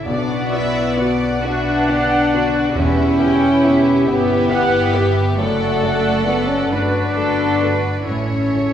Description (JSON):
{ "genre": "cinematic", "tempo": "45 BPM (dotted quarters)", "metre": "6/8", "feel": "rubato", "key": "E dorian", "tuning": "A4 = 440 Hz", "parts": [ { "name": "dark studio violin section", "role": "second line", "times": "0.0-8.7 s", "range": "A4 to G5", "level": "-25 LUFS", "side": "left 1 dB", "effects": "none" }, { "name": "dark baby grand piano", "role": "accompaniment", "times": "0.0-8.7 s", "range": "B1 to F#5", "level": "-24 LUFS", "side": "equal", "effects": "none" }, { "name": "concert harp", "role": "arpeggios", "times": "0.0-8.7 s", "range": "E2 to F#5", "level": "-30 LUFS", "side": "left 4 dB", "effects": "none" }, { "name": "rich chamber violin section", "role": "melody", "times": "0.1-8.7 s", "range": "E4 to E5", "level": "-26 LUFS", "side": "left 1 dB", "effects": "none" }, { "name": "dark studio viola section", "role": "accompaniment", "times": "0.1-8.7 s", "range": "D4 to F#5", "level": "-23 LUFS", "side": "right 2 dB", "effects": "none" }, { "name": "warm French horn section", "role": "sustained chords", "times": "0.1-8.7 s", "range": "A3 to D4", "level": "-19 LUFS", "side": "left 1 dB", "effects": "none" }, { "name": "rich studio cello section", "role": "bass", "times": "0.1-8.7 s", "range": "A3 to D4", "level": "-26 LUFS", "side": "right 2 dB", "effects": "none" }, { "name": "warm studio double bass section", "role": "bass", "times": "0.1-8.7 s", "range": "E1 to B1", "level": "-25 LUFS", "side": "right 2 dB", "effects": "none" }, { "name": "timpani", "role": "percussion", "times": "2.8-4.0 s", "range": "E2", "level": "-24 LUFS", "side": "right 1 dB", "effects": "none" } ], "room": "wet scoring stage reverb, RT60 1.6 s", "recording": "heard from further back in the room", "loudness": "-14 LUFS", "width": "side -9 dB against mid", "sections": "0.0-8.7 A section", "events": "none", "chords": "0.1 Bm; 2.8 Em; 5.4 D/F#; 8.1 A" }